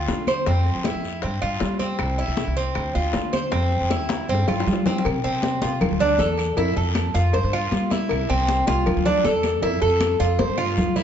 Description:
latin, Cuban son and guajira; 157 BPM; 4/4; straight; C major; A4 = 440 Hz
Cuban tres; arpeggios; 0.0-11.0 s; C4 to C5; -23 LUFS; right 2 dB
upright bass; bass; 0.0-11.0 s; C2 to G3; -24 LUFS; equal
bongos and cowbell; percussion; 0.1-11.0 s; -31 LUFS; left 6 dB
congas; percussion; 0.1-11.0 s; -27 LUFS; left 2 dB
guiro; percussion; 0.1-11.0 s; -37 LUFS; left 6 dB
claves; percussion; 0.3-10.8 s; -38 LUFS; right 5 dB
moderate large studio reverb, RT60 1.2 s; dark, warm production, nothing above 7.8 kHz; -19 LUFS; side -8 dB against mid
0.0-5.1 A section; 5.1-11.0 B section
drum fill 4.1-5.1, 10.4-11.0
0.5 F5; 1.2 G7sus4; 2.0 C; 2.8 Dm7; 3.5 F5; 4.3 G7sus4; 5.1 Csus4; 5.8 Dmadd9; 6.6 Fmaj7; 7.3 G7sus4; 8.1 C; 8.9 Dmadd9; 9.6 Fmaj7; 10.4 G7sus4
0.08 | 0.46 0.85 1.23 1.61 | 2.00 2.38 2.76 3.14 | 3.53 3.91 4.29 4.67 | 5.05 5.44 5.82 6.20 | 6.58 6.96 7.34 7.72 | 8.11 8.49 8.87 9.25 | 9.63 10.01 10.39 10.77

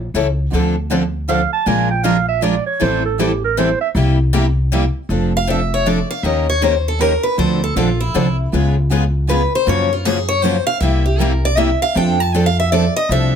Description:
acoustic string swing (jazz manouche); 157 BPM; 3/4; swing 63% on 8ths; F major; A4 = 440 Hz
upright bass; bass; 0.0-13.4 s; F1 to Gb2; -18 LUFS; equal
picked steel-string acoustic guitar; accompaniment; 0.1-13.3 s; C3 to Bb4; -20 LUFS; left 7 dB
picked steel-string acoustic guitar; accompaniment; 0.5-13.3 s; C3 to Bb4; -22 LUFS; right 6 dB
breathy clarinet; second line; 1.3-3.9 s; G4 to A5; -18 LUFS; right 7 dB
picked steel-string acoustic guitar; melody; 5.4-13.3 s; E4 to A5; -18 LUFS; equal; plate reverb
moderate studio reverb, RT60 0.5 s; -14 LUFS; side -8 dB against mid
0.0-5.1 A section; 5.1-13.4 A section
clarinet solo 0.0-5.1; steel-string acoustic guitar solo 5.1-13.4
0.0 A7; 0.5 Dm7; 1.7 Bb7; 2.8 Am7; 4.0 C7; 5.1 F6; 6.2 Eb7; 7.4 Dm7; 8.5 Db7; 9.7 Gbmaj7; 10.8 C7; 12.0 F6
0.14 | 0.52 0.90 1.28 | 1.67 2.05 2.43 | 2.81 3.19 3.57 | 3.95 4.34 4.72 | 5.10 5.48 5.86 | 6.24 6.62 7.01 | 7.39 7.77 8.15 | 8.53 8.91 9.29 | 9.67 10.05 10.44 | 10.82 11.20 11.58 | 11.96 12.34 12.72 | 13.10

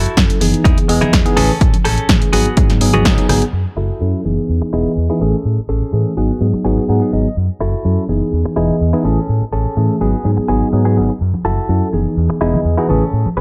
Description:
filtered disco house; 125 BPM; 4/4; straight; F# dorian; A4 = 441 Hz
direct-recorded clean electric guitar; riff; 0.0-13.4 s; B3 to G#5; -24 LUFS; equal; sidechain pumping, low-pass filter
overdriven fingered electric bass; bass; 0.0-13.4 s; E1 to A2; -20 LUFS; equal; sidechain pumping, low-pass filter
punchy analog drum machine; drums; 0.1-3.5 s; hi-hat, rim click, snare drum; -21 LUFS; equal; sidechain pumping on hats
egg shaker and congas; percussion; 0.1-3.5, 11.2-13.4 s; -26 LUFS; equal
bell-like tine electric piano; accompaniment; 0.2-13.0 s; E3 to D#5; -20 LUFS; equal; phaser, vintage 12-bit sampler grit, sidechain pumping, low-pass filter
electronic kick drum; drums; 0.2-3.2 s; -16 LUFS; equal; overdrive
little or no reverb; -15 LUFS; mono
0.0-3.5 A section; 3.5-13.4 B section
band accent 3.1; filter sweep 3.5-13.4; clean electric guitar fill 6.4-7.4
0.0 F#m7; 0.7 Emaj7; 1.4 Amaj7; 2.3 G#m7; 3.5 F#m7; 4.5 Emaj7; 5.2 Amaj7; 6.2 G#m7; 7.4 F#m7; 8.3 Emaj7; 9.1 Amaj7; 10.0 G#m7; 11.2 F#m7; 12.2 Emaj7; 12.9 Amaj7
0.17 0.65 1.13 | 1.61 2.09 2.57 3.05 | 3.53 4.01 4.49 4.97 | 5.45 5.93 6.41 6.89 | 7.37 7.85 8.33 8.81 | 9.29 9.77 10.25 10.73 | 11.21 11.69 12.17 12.65 | 13.13

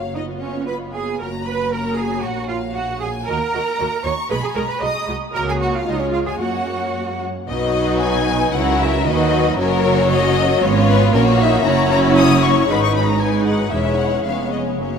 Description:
quick classical-period movement for string orchestra; 115 BPM; 2/4; rubato; F# major, B major from 7.5 s; A4 = 439 Hz
rich studio violin section; melody; 0.0-15.0 s; A#4 to D#6; -24 LUFS; left 7 dB
clear studio violin section; second line; 0.0-15.0 s; C#4 to D#6; -22 LUFS; left 3 dB
rich studio viola section; accompaniment; 0.0-15.0 s; F#3 to G#4; -21 LUFS; equal
warm studio double bass section; bass; 0.0-15.0 s; E1 to F#2; -23 LUFS; right 5 dB
rich symphonic cello section; bass; 0.1-15.0 s; E2 to D#5; -24 LUFS; right 5 dB
wet cathedral reverb, RT60 4.8 s; in a vast, echoing space; -16 LUFS; side -6 dB against mid
0.0-7.5 A section; 7.5-15.0 B section
0.2 C#7/F#; 1.2 F#; 2.2 F#/A#; 3.3 D#m; 4.3 G#m; 4.8 G#7; 5.3 F#/C#; 5.9 C#; 6.4 F#; 7.5 B; 8.5 F#7/C#; 9.1 B/D#; 9.6 F#; 10.6 C#7/G#; 11.1 F#/A#; 11.7 F#5; 12.7 G#m; 13.7 C#m/E; 14.3 C#7/E#
| 0.16 0.69 | 1.21 1.72 | 2.24 2.77 | 3.28 3.80 | 4.31 4.82 | 5.34 5.87 | 6.41 6.95 | 7.48 8.02 | 8.54 9.06 | 9.58 10.10 | 10.61 11.13 | 11.65 12.17 | 12.69 13.21 | 13.73 14.26 | 14.80

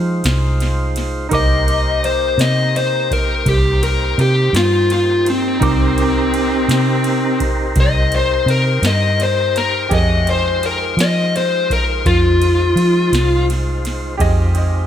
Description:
slow blues; 56 BPM (dotted quarters); 12/8; straight; C minor; A4 = 440 Hz
bright upright piano; accompaniment; 0.0-14.9 s; Eb4 to D6; -25 LUFS; right 5 dB; dub echo
tonewheel organ; sustained chords; 0.0-14.9 s; Ab3 to F#5; -24 LUFS; right 1 dB; slow rotary speaker
vintage muted fingered electric bass; bass; 0.0-14.9 s; C2 to F3; -18 LUFS; equal
booming analog drum machine; drums; 0.2-14.7 s; kick drum, ride cymbal, snare drum; -22 LUFS; equal; dub echo
smooth overdriven lead guitar; melody; 1.3-13.4 s; C4 to Eb5; -17 LUFS; left 2 dB; dub echo
light reverb; echo-heavy mix; -13 LUFS; side -10 dB against mid
0.0-14.9 A section
lead electric guitar solo 0.0-14.9
0.0 Fm7; 1.3 Cm7; 9.9 Fm7
0.24 | 1.32 2.39 3.47 4.54 | 5.62 6.70 7.77 8.84 | 9.91 10.99 12.06 13.13 | 14.20

